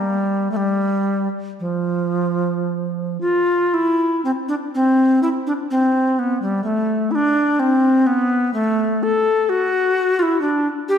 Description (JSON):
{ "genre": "classical, baroque-style fantasia for unaccompanied recorder", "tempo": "54-65 BPM", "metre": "3/4", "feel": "rubato", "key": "C major from 3.7 s", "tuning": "A4 = 440 Hz", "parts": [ { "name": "mellow bass recorder", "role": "solo", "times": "0.0-11.0 s", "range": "F3 to A4", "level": "-16 LUFS", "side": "equal", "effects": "none" } ], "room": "wet scoring stage reverb, RT60 1.8 s", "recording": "heard from further back in the room", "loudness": "-16 LUFS", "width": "side -8 dB against mid", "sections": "0.0-3.7 A section; 3.7-11.0 A section", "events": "none", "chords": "none" }